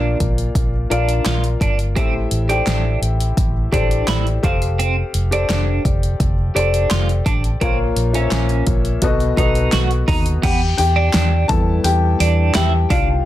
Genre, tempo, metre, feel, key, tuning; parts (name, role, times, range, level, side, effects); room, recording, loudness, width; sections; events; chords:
piano-driven pop; 85 BPM; 4/4; straight; F major; A4 = 440 Hz
warm upright piano; accompaniment; 0.0-13.3 s; A2 to A5; -22 LUFS; left 4 dB
twelve-string electric guitar; riff; 0.0-13.1 s; B3 to F#4; -23 LUFS; right 6 dB; tremolo
vintage muted fingered electric bass; bass; 0.0-13.2 s; F1 to E2; -18 LUFS; equal
deep house drum kit; drums; 0.2-13.1 s; crash cymbal, handclaps, hi-hat, kick drum, snare drum; -20 LUFS; equal
light reverb, digital ambience; dense, heavily limited modern master; -15 LUFS; side -13 dB against mid
0.0-10.4 A section; 10.4-13.3 B section
upright piano solo 10.4-13.3
0.0 Bb; 2.0 Am7; 4.4 Fadd9; 7.6 Bbm; 9.0 B7; 10.4 Em